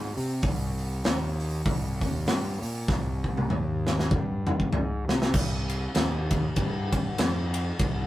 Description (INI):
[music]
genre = stoner and doom metal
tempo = 98 BPM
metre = 4/4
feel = swing 58% on 8ths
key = C minor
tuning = A4 = 440 Hz
[part]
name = fuzz fingered electric bass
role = bass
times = 0.0-8.1 s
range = C2 to C3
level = -29 LUFS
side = equal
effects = overdrive
[part]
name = big rock drum kit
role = drums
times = 0.2-8.0 s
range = crash cymbal, hi-hat, kick drum, ride cymbal, snare drum, toms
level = -26 LUFS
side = equal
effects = none
[sound]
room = moderate studio reverb, RT60 0.6 s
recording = rough rehearsal-room recording, tube saturation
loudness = -25 LUFS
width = side -15 dB against mid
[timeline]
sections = 0.0-5.3 A section; 5.3-8.1 B section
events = drum fill 2.9-5.3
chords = none